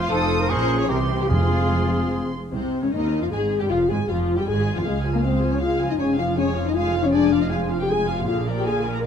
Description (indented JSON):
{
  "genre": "quick classical-period movement for symphony orchestra",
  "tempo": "156 BPM",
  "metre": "3/4",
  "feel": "rubato",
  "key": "F minor",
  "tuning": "A4 = 438 Hz",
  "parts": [
    { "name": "muted studio violin section", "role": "melody", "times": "0.0-9.0 s", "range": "C4 to Eb6", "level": "-32 LUFS", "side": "equal", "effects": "none" },
    { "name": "bright small flute group", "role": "second line", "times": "0.0-2.1 s", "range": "F4 to F5", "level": "-29 LUFS", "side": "left 5 dB", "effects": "none" },
    { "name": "mellow cor anglais", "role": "second line", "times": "0.0-2.3 s", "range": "F4 to Ab4", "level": "-28 LUFS", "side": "right 2 dB", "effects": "none" },
    { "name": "muted studio violin section", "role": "second line", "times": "0.0-9.0 s", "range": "F4 to Bb5", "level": "-31 LUFS", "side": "left 2 dB", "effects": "none" },
    { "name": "muted studio viola section", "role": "accompaniment", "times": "0.0-9.1 s", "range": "C3 to C5", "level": "-30 LUFS", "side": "right 1 dB", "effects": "none" },
    { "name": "muted studio cello section", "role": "bass", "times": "0.0-9.1 s", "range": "C2 to C3", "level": "-28 LUFS", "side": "right 2 dB", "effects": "none" },
    { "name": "muted studio double bass section", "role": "bass", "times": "0.0-9.1 s", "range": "F1 to Eb2", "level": "-28 LUFS", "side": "right 4 dB", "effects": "none" },
    { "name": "mellow French horn section", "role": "sustained chords", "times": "0.1-9.1 s", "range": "E3 to Bb4", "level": "-23 LUFS", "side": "left 4 dB", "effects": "none" },
    { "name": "timpani", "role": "percussion", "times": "1.3-1.9 s", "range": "F2", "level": "-24 LUFS", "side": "right 1 dB", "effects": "none" }
  ],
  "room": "light reverb",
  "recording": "close, detailed microphones",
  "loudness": "-19 LUFS",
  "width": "side -8 dB against mid",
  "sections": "0.0-2.5 A section; 2.5-9.1 B section",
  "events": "none",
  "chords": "0.1 F7; 0.5 Bbm; 0.9 C; 1.3 Fm; 2.5 Fm/C; 3.7 Fm; 4.8 Db; 6.0 Fm; 8.3 Bb7"
}